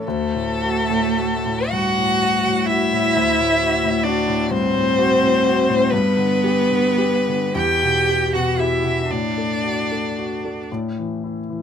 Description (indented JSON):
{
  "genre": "classical, slow romantic movement for piano trio",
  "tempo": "35-44 BPM (dotted quarters)",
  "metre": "6/8",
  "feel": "rubato",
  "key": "D major",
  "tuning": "A4 = 445 Hz",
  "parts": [
    { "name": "clear violin", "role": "melody", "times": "0.0-10.7 s", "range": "A4 to G5", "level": "-21 LUFS", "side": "left 4 dB", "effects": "none" },
    { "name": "clear grand piano", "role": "accompaniment", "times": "0.0-11.6 s", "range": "D2 to G4", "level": "-22 LUFS", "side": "left 2 dB", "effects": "none" },
    { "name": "clear cello", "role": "second line", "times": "0.1-10.7 s", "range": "A3 to G4", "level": "-22 LUFS", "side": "right 6 dB", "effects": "none" }
  ],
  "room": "light reverb",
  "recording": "close, detailed microphones",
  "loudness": "-17 LUFS",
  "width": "side -8 dB against mid",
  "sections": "0.0-11.6 A section",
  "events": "none",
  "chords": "0.0 D; 5.9 G; 7.5 Em; 9.1 D/A; 10.7 A5"
}